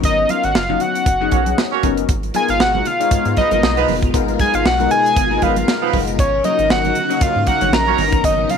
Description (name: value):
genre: early-eighties boogie funk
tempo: 117 BPM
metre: 4/4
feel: swing 56% on 16ths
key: G# dorian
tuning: A4 = 440 Hz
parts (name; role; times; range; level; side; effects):
- fat analog lead; melody; 0.0-8.6 s; C#5 to A#5; -17 LUFS; equal; chorus, slapback echo
- funky polysynth comp; accompaniment; 0.0-8.6 s; F#3 to C#5; -22 LUFS; left 14 dB; chorus
- rubbery square bass; bass; 0.0-8.5 s; F#1 to G#2; -23 LUFS; right 1 dB; none
- tight funk drum kit; drums; 0.0-8.6 s; hi-hat, kick drum, snare drum; -20 LUFS; right 1 dB; none
- congas; percussion; 0.0-8.6 s; none; -29 LUFS; right 16 dB; none
- mellow horn section; second line; 1.3-8.0 s; E#3 to C#5; -23 LUFS; right 14 dB; none
- phased string machine; sustained chords; 2.1-8.6 s; B2 to A#4; -25 LUFS; equal; ensemble chorus, phaser
room: light reverb, studio reverb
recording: 1960s-style stereo with parts hard left and right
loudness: -14 LUFS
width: side -7 dB against mid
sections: 0.0-8.6 A section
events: none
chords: 0.0 Bmaj9; 2.1 G#m69; 6.2 D#m7/G#; 8.0 Bmaj9